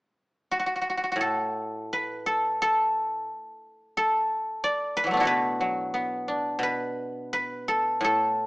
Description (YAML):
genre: chinese traditional, Chinese solo plucked strings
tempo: 83-90 BPM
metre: 4/4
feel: rubato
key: unclear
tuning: A4 = 439 Hz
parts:
  - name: guzheng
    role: solo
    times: 0.5-8.5 s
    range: A2 to D5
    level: -24 LUFS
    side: equal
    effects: none
room: light reverb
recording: band playing live in one room, small speaker sound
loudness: -24 LUFS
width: side -24 dB against mid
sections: 0.0-8.5 A section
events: none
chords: none